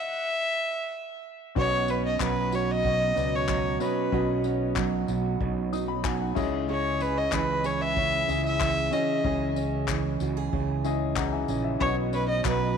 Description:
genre	acoustic pop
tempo	94 BPM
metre	4/4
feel	straight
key	B major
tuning	A4 = 439 Hz
part	rich violin	melody	0.0-12.8 s	B4 to E5	-28 LUFS	left 1 dB	tape echo
part	clear upright piano	accompaniment	1.6-12.8 s	C#4 to D#6	-32 LUFS	left 13 dB	none
part	fingerpicked steel-string acoustic guitar	accompaniment	1.6-12.8 s	B2 to G#4	-30 LUFS	right 11 dB	none
part	fretless electric bass	bass	1.6-12.8 s	A#1 to C#2	-31 LUFS	equal	none
part	cloth-damped thuddy drum kit	drums	1.6-12.6 s	crash cymbal, handclaps, kick drum, tambourine	-34 LUFS	left 2 dB	none
part	group handclap	percussion	2.2-12.6 s	none	-37 LUFS	left 14 dB	none
room	light reverb, small room ambience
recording	1960s-style stereo with parts hard left and right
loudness	-24 LUFS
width	side -7 dB against mid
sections	0.0-1.6 A section; 1.6-12.8 B section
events	stop 0.0-1.6; upright piano fill 10.5-11.8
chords	0.0 N.C.; 1.6 Badd9; 6.4 C#madd9; 11.8 Badd9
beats	0.28 0.92 | 1.56 2.20 2.85 3.48 | 4.12 4.76 5.41 6.05 | 6.69 7.33 7.97 8.61 | 9.25 9.89 10.53 11.17 | 11.81 12.45

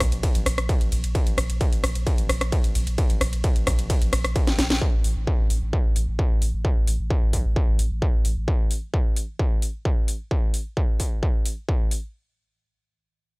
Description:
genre	driving peak-time techno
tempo	131 BPM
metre	4/4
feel	straight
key	unclear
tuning	A4 = 440 Hz
part	saturated sub bass	bass	0.0-8.5 s	A1 to Bb1	-26 LUFS	equal	tube saturation, sidechain pumping, low-pass filter
part	electronic kick drum	drums	0.0-11.8 s	none	-22 LUFS	equal	distortion
part	techno drum kit	drums	0.0-12.0 s	hi-hat, ride cymbal, rim click, snare drum	-28 LUFS	equal	none
room	digital ambience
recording	dry, gritty hardware recording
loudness	-21 LUFS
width	side -29 dB against mid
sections	0.0-4.8 A section; 4.8-12.1 B section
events	drop 0.0-4.8; drum fill 4.5-4.8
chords	none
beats	0.23 0.69 | 1.15 1.61 2.07 2.52 | 2.98 3.44 3.90 4.36 | 4.81 5.27 5.73 6.19 | 6.65 7.10 7.56 8.02 | 8.48 8.94 9.39 9.85 | 10.31 10.77 11.23 11.68

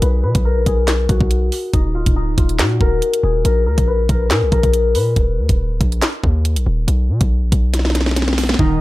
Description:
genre	hip hop, drill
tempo	140 BPM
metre	4/4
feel	half-time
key	Eb harmonic minor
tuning	A4 = 440 Hz
part	concert harp	melody	0.0-8.8 s	Eb4 to B4	-20 LUFS	left 3 dB	low-pass filter, tape echo
part	hard-hitting 808-style bass	bass	0.0-8.8 s	D1 to B2	-17 LUFS	equal	none
part	drill drum kit	drums	0.0-8.7 s	handclaps, hi-hat, kick drum, snare drum	-17 LUFS	equal	none
part	felt-muted upright piano	accompaniment	8.6-8.8 s	Eb3	-16 LUFS	right 2 dB	low-pass filter
part	airy breathy pad	sustained chords	8.6-8.8 s	Bb4 to Eb6	-29 LUFS	right 1 dB	chorus
room	little or no reverb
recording	none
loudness	-14 LUFS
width	side -18 dB against mid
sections	0.0-8.8 A section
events	filter sweep 0.0-8.6; drum fill 7.7-8.6; hi-hats muted 8.6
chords	0.0 B5; 1.7 Eb5; 3.5 N.C.; 5.2 Eb5; 6.9 N.C.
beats	| 0.02 0.45 0.88 1.31 | 1.74 2.16 2.59 3.02 | 3.45 3.88 4.31 4.74 | 5.16 5.59 6.02 6.45 | 6.88 7.31 7.74 8.16 | 8.59

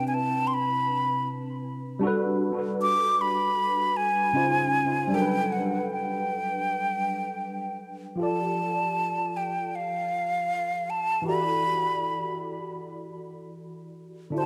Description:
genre	R&B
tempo	78 BPM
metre	4/4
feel	swing 61% on 16ths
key	G major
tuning	A4 = 440 Hz
part	breathy mellow silver concert flute	melody	0.0-14.5 s	F5 to D6	-28 LUFS	equal	analog delay
part	tine electric piano	accompaniment	0.0-14.5 s	C3 to D5	-32 LUFS	equal	ensemble chorus, analog delay
room	moderate echo chamber reverb, RT60 2.4 s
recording	echo-heavy mix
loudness	-27 LUFS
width	mono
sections	0.0-8.2 A section; 8.2-14.5 B section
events	none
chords	0.0 Cmaj9; 2.0 Gmaj9; 4.3 C#maj9; 5.1 Gmaj9; 8.2 F6; 11.3 Em11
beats	0.49 1.26 | 2.03 2.80 3.57 4.34 | 5.11 5.88 6.65 7.42 | 8.19 8.95 9.72 10.49 | 11.26 12.03 12.80 13.57 | 14.34

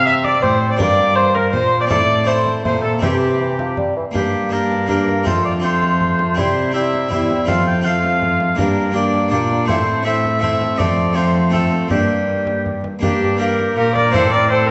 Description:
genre	classical, renaissance-style consort dance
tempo	162 BPM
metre	3/4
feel	straight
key	G dorian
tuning	A4 = 439 Hz
part	clear oboe	melody	0.0-14.7 s	D4 to G5	-24 LUFS	equal	none
part	rich viola	second line	0.0-14.7 s	Bb3 to E5	-22 LUFS	equal	none
part	harpsichord	accompaniment	0.0-14.7 s	E2 to Bb4	-25 LUFS	equal	none
part	mellow bassoon	accompaniment	0.0-14.7 s	E3 to C4	-26 LUFS	equal	none
part	dark cello	bass	0.0-14.7 s	E2 to C3	-24 LUFS	equal	none
part	frame drum	percussion	0.2-14.3 s	none	-28 LUFS	equal	none
room	wet recital hall reverb, RT60 1.5 s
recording	nothing above 8.0 kHz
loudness	-17 LUFS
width	mono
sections	0.0-4.2 A section; 4.2-13.0 B section; 13.0-14.7 C section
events	none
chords	0.0 C; 0.8 Gm; 1.9 Am; 3.0 C; 4.2 Gm; 5.3 F; 6.4 C; 7.5 F; 8.6 Gm; 9.7 Am; 10.8 F; 11.9 Gm; 14.1 Am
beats	0.07 0.43 | 0.80 1.17 1.54 | 1.91 2.28 2.65 | 3.03 3.40 3.78 | 4.15 4.53 4.89 | 5.27 5.64 6.00 | 6.38 6.75 7.12 | 7.48 7.85 8.22 | 8.59 8.96 9.32 | 9.69 10.06 10.43 | 10.80 11.17 11.54 | 11.91 12.29 12.66 | 13.03 13.40 13.77 | 14.14 14.51

